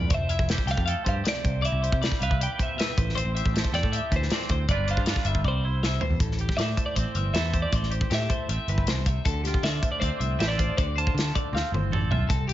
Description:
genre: math rock and midwest emo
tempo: 158 BPM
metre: 4/4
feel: straight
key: unclear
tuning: A4 = 439 Hz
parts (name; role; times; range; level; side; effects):
- twelve-string electric guitar; melody; 0.0-11.3 s; B4 to A5; -32 LUFS; right 1 dB; spring reverb, plate reverb, digital delay
- twangy electric guitar; accompaniment; 0.0-12.5 s; G2 to B4; -35 LUFS; right 6 dB; harmonic tremolo, plate reverb
- twelve-string electric guitar; arpeggios; 0.0-12.5 s; G4 to G5; -33 LUFS; left 6 dB; plate reverb
- picked electric bass; bass; 0.0-12.5 s; F1 to D3; -27 LUFS; equal; none
- modern studio drum kit; drums; 0.1-12.5 s; hi-hat, kick drum, snare drum, toms; -27 LUFS; equal; none
room: little or no reverb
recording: nothing above 7.6 kHz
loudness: -23 LUFS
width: side -13 dB against mid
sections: 0.0-6.2 A section; 6.2-12.5 B section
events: drum fill 5.4-6.2, 11.5-12.3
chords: 0.1 Fmaj9; 1.4 Cmaj9; 3.0 Am7; 4.7 G7; 5.4 Cmaj9; 6.2 Am7; 9.3 Dm7

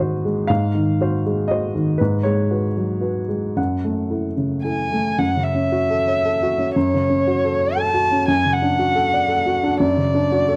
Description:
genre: neoclassical piano and strings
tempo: 117 BPM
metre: 3/4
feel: rubato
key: F# minor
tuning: A4 = 437 Hz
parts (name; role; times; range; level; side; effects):
- dark grand piano; accompaniment; 0.0-10.6 s; F#2 to F#5; -21 LUFS; equal; none
- muted violin; melody; 4.6-10.6 s; C#5 to A5; -22 LUFS; equal; slapback echo
room: light reverb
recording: dry, close 1970s-style studio recording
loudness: -20 LUFS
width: mono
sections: 0.0-5.2 A section; 5.2-10.6 B section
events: none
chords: 0.0 G#7; 2.0 C#7sus4/G#; 3.6 F#m7; 8.3 Dmaj7/F#

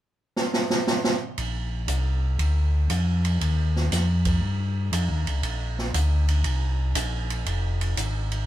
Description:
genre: soul jazz organ trio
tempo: 118 BPM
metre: 4/4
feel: swing 68% on 8ths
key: Bb mixolydian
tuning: A4 = 440 Hz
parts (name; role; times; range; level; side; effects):
- open jazz drum kit; drums; 0.4-8.4 s; hi-hat, kick drum, ride cymbal, snare drum; -28 LUFS; right 2 dB; none
- mellow tonewheel organ; bass; 1.4-8.5 s; F1 to G2; -23 LUFS; equal; chorus vibrato, slow rotary speaker
room: light reverb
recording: band playing live in one room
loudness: -22 LUFS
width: side -13 dB against mid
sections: 0.0-1.4 A section; 1.4-8.5 B section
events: drum fill 0.4-1.4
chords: none

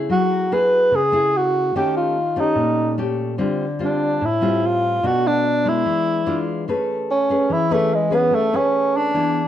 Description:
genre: bossa nova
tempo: 146 BPM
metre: 4/4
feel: straight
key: A major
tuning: A4 = 440 Hz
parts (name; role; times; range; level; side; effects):
- nylon-string guitar; accompaniment; 0.0-9.5 s; A2 to B4; -22 LUFS; left 2 dB; none
- breathy tenor saxophone; melody; 0.1-9.5 s; G#3 to B4; -18 LUFS; right 1 dB; none
room: light reverb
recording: none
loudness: -17 LUFS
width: side -11 dB against mid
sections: 0.0-9.5 A section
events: none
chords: 0.1 F#m9; 1.7 D#7#11; 3.4 Dm11; 5.0 Bm7; 5.9 E7b9; 6.7 Amaj9

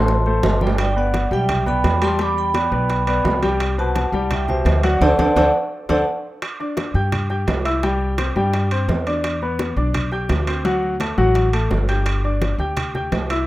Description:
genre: latin, salsa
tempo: 170 BPM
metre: 4/4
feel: straight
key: unclear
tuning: A4 = 439 Hz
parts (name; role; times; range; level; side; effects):
- vibraphone with medium hard mallets; melody; 0.0-6.0 s; C5 to D6; -22 LUFS; right 2 dB; plate reverb
- clear baby grand piano; accompaniment; 0.0-13.4 s; B2 to G6; -22 LUFS; left 2 dB; plate reverb
- upright bass; bass; 0.0-13.5 s; G1 to G2; -21 LUFS; equal; none
- bongos; percussion; 0.1-13.5 s; none; -31 LUFS; left 4 dB; none
- congas; percussion; 0.1-13.5 s; none; -28 LUFS; equal; none
- timbales; percussion; 0.1-13.5 s; none; -26 LUFS; right 3 dB; none
room: moderate studio ambience, RT60 0.5 s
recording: rough home demo mix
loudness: -17 LUFS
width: side -16 dB against mid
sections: 0.0-6.4 A section; 6.4-13.5 B section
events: drum fill 0.0-0.8, 5.5-6.4; band accent 5.0-6.4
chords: 0.0 D7(no3) (rootless); 0.8 Gmaj7; 2.2 Em7; 3.6 Cmaj7; 5.0 D7; 6.4 C; 9.2 Em7; 10.7 D; 12.1 G5

